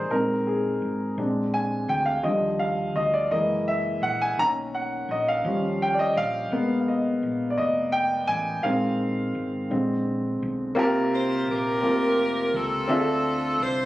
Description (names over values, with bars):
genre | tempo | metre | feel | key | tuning
slow gospel | 56 BPM (dotted quarters) | 6/8 | straight | unclear | A4 = 440 Hz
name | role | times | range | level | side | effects
warm grand piano | accompaniment | 0.0-13.9 s | C3 to A#5 | -23 LUFS | equal | none
hollow-body short-scale fingered electric bass | bass | 0.0-13.9 s | F1 to Eb2 | -34 LUFS | equal | none
bright saxophone section | melody | 11.1-13.9 s | C4 to C5 | -26 LUFS | equal | none
room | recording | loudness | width
light reverb | recorded on a phone in the room, club reverb | -22 LUFS | side -16 dB against mid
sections
0.0-10.8 A section; 10.8-13.9 B section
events
grand piano solo 0.0-10.8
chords
0.1 Bb7sus4; 1.2 Bb7; 2.2 Ebmaj7; 3.3 Gb7; 4.4 Bmaj7; 5.4 Eb7; 6.5 Abmadd9; 8.6 Bb7sus4; 9.7 Bb7; 10.8 C7sus4; 12.9 Dm9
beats
| 0.11 1.18 | 2.25 3.31 | 4.38 5.45 | 6.51 7.58 | 8.64 9.70 | 10.76 11.82 | 12.88